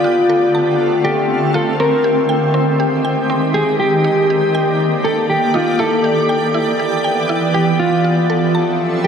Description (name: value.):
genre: hip hop.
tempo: 120 BPM.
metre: 4/4.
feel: half-time.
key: unclear.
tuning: A4 = 442 Hz.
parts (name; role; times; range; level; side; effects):
mellow electric guitar; melody; 0.0-9.1 s; F4 to Bb4; -16 LUFS; left 1 dB; lush chorus, analog delay.
shimmering ambient pad; sustained chords; 0.0-9.1 s; D3 to E5; -16 LUFS; equal; chorus, built-in reverb.
mallet-like synth pluck; arpeggios; 0.0-9.1 s; C4 to A5; -24 LUFS; right 2 dB; chorus, analog delay.
room: wet church reverb, RT60 3.5 s.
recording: dreamy mix soaked in reverb.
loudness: -13 LUFS.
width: side -7 dB against mid.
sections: 0.0-9.1 A section.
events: none.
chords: 0.0 F; 1.8 Abmaj7; 3.8 Ebmaj7; 5.8 Em7; 7.8 Fmaj7.